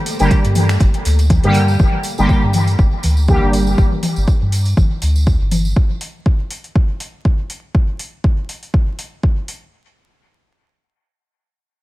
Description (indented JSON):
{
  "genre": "dub techno",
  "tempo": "121 BPM",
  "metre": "4/4",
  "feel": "swing 55% on 16ths",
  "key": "G minor",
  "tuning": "A4 = 440 Hz",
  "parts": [
    { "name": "deep dark ambient pad", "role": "sustained chords", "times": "0.0-1.8 s", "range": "Bb3 to A4", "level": "-32 LUFS", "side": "left 2 dB", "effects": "none" },
    { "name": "deep house drum kit", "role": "drums", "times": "0.1-9.6 s", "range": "finger snaps, hi-hat", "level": "-29 LUFS", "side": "left 1 dB", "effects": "overdrive, dub echo" },
    { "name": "tambourine", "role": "percussion", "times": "0.1-5.7 s", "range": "none", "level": "-31 LUFS", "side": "right 4 dB", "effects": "dub echo" },
    { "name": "resonant sweep polysynth", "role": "stabs", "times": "0.2-3.5 s", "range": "D3 to G4", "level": "-18 LUFS", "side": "equal", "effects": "chorus, phaser, cassette tape, sidechain pumping, dub echo" },
    { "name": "soft dub sub bass", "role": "bass", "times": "0.2-5.7 s", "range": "G1 to G2", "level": "-16 LUFS", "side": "equal", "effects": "sidechain pumping" },
    { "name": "electronic kick drum", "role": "drums", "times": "0.3-9.3 s", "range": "none", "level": "-14 LUFS", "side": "equal", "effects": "overdrive" },
    { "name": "electronic toms and congas", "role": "percussion", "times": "0.6-5.6 s", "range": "none", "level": "-24 LUFS", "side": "left 2 dB", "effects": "overdrive, sidechain pumping on toms, sidechain pumping on perc, dub echo" }
  ],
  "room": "light reverb",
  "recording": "echo-heavy mix, vinyl crackle",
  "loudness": "-14 LUFS",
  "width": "side -18 dB against mid",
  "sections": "0.0-1.8 A section; 1.8-9.7 B section",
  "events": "filter sweep on analog polysynth 1.8-3.8",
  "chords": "0.0 Gm; 1.8 G5"
}